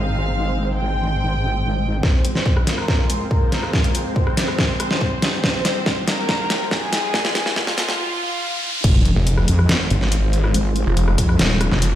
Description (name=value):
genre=heavy wobble dubstep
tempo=141 BPM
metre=4/4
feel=half-time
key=F minor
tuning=A4 = 439 Hz
part: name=rich studio violin section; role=melody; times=0.0-8.8 s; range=Ab3 to G5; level=-26 LUFS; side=equal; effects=vintage 12-bit sampler grit, low-pass filter, dub echo
part: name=lush unison pad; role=sustained chords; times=0.0-12.0 s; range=Ab3 to G5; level=-28 LUFS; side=equal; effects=chorus, phaser, sidechain pumping
part: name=wobble bass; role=bass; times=0.0-2.0, 8.8-11.7 s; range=Eb1 to F2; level=-19 LUFS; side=equal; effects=chorus, overdrive
part: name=dubstep drum kit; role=drums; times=2.0-11.9 s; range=crash cymbal, hi-hat, rim click, snare drum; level=-21 LUFS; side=equal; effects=none
part: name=electronic kick drum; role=drums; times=2.0-11.3 s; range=none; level=-20 LUFS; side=equal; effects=none
part: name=riser, swell and sub drop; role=sound effects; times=4.2-10.5 s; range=none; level=-28 LUFS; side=equal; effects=none
part: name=snarling distorted saw bass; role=bass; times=9.2-12.0 s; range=F1 to Ab1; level=-17 LUFS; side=equal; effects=distortion, overdrive
room=light reverb, digital ambience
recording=played on a big sound system in a bare room, stone room reverb, high-pass filter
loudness=-17 LUFS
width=side -12 dB against mid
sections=0.0-2.0 A section; 2.0-8.8 B section; 8.8-12.0 C section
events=filter sweep on analog synth pad 0.0-2.0; build-up 2.0-8.8; drum fill 2.0-8.0; filter sweep on violin section 2.0-8.8; filter sweep 2.0-8.8; riser 4.2-8.8; break 8.0-8.8; swell 8.0-8.8; drop 8.8-12.0; impact 8.8-10.5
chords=0.0 Ab; 2.0 Fm; 8.8 Fm7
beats=| 0.33 0.76 1.18 1.61 | 2.03 2.46 2.88 3.31 | 3.73 4.16 4.59 5.01 | 5.44 5.86 6.29 6.71 | 7.14 7.57 7.99 8.42 | 8.84 9.27 9.69 10.12 | 10.54 10.97 11.39 11.82